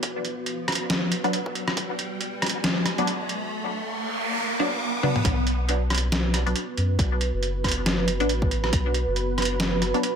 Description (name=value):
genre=deep dubstep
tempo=138 BPM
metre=4/4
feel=swing 58% on 16ths, half-time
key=B minor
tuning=A4 = 440 Hz
part: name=dark analog pad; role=sustained chords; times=0.0-10.2 s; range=B3 to B4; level=-31 LUFS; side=right 4 dB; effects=chorus
part: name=soft dub sub bass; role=bass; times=0.0-9.9 s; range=F#1 to F#2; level=-26 LUFS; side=equal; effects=tube saturation, high-pass filter
part: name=electronic kick drum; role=drums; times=0.0-1.9, 5.2-8.8 s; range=none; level=-27 LUFS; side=equal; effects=overdrive, high-pass filter on kick, high-pass filter on room
part: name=trip hop sampler-style drum kit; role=drums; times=0.0-10.1 s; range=hi-hat, rim click, snare drum, toms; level=-26 LUFS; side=equal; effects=overdrive
part: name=riser and noise sweep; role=sound effects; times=0.0-5.2 s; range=none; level=-30 LUFS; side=equal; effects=none
part: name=filtered dub chord stab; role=stabs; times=1.2-10.1 s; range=F#3 to D4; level=-29 LUFS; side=left 1 dB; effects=phaser, dub echo
room=light reverb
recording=none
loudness=-22 LUFS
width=side -7 dB against mid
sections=0.0-5.2 A section; 5.2-10.2 B section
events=build-up 0.0-5.2; riser 0.0-5.2; noise sweep 3.5-5.2; drum fill 5.0; drop 5.2-10.2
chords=0.0 Bm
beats=| 0.03 0.47 0.90 1.34 | 1.77 2.21 2.64 3.08 | 3.51 3.94 4.38 4.82 | 5.25 5.68 6.12 6.55 | 6.99 7.42 7.86 8.29 | 8.73 9.16 9.60 10.03